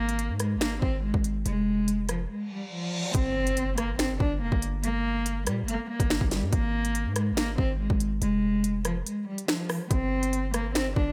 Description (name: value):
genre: hip hop, drill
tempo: 142 BPM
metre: 4/4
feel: half-time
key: G phrygian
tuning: A4 = 440 Hz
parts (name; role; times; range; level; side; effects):
- dark cello; melody; 0.0-11.1 s; F3 to D4; -31 LUFS; equal; none
- hard-hitting 808-style bass; bass; 0.0-11.1 s; F1 to Bb2; -32 LUFS; equal; none
- drill drum kit; drums; 0.1-11.1 s; finger snaps, hi-hat, kick drum, rim click, snare drum; -31 LUFS; equal; none
- reverse cymbal and impact; sound effects; 2.5-4.8 s; none; -40 LUFS; equal; none
room: digital ambience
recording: none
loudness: -28 LUFS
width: mono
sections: 0.0-3.1 A section; 3.1-11.1 B section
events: break 2.3-3.1, 9.1-9.9; reverse cymbal 2.5-3.1; impact 3.1-4.8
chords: 0.0 Absus2; 1.5 Fm; 3.1 Gm; 6.5 Absus2; 8.2 Fm; 9.9 N.C.